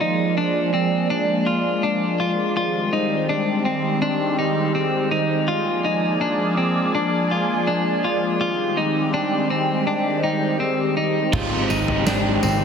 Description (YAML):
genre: dream pop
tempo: 82 BPM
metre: 4/4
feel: straight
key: Ab lydian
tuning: A4 = 440 Hz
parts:
  - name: phased analog pad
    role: sustained chords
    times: 0.0-12.6 s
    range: Eb3 to D5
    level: -22 LUFS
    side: right 1 dB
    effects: phaser, chorus, shimmer reverb
  - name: clean electric guitar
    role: arpeggios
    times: 0.0-12.6 s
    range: C4 to F4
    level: -22 LUFS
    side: left 2 dB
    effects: wide subtle chorus, tape echo, shimmer reverb
  - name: crunchy overdriven guitar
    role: accompaniment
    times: 11.3-12.6 s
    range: Ab3 to G4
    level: -24 LUFS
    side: right 4 dB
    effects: tremolo, wide subtle chorus, shimmer reverb
  - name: vintage muted picked electric bass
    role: bass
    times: 11.3-12.6 s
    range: Ab1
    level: -26 LUFS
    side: right 1 dB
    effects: none
  - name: huge arena drum kit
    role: drums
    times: 11.3-12.6 s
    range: crash cymbal, kick drum, snare drum, tambourine, toms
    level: -24 LUFS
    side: equal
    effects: none
room: moderate huge ambient reverb, RT60 4.4 s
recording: dense, heavily limited modern master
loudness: -18 LUFS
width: side -6 dB against mid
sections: 0.0-11.3 A section; 11.3-12.6 B section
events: none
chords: 0.0 Bb7; 2.6 Abmaj7; 5.5 Bb7; 8.4 Abmaj7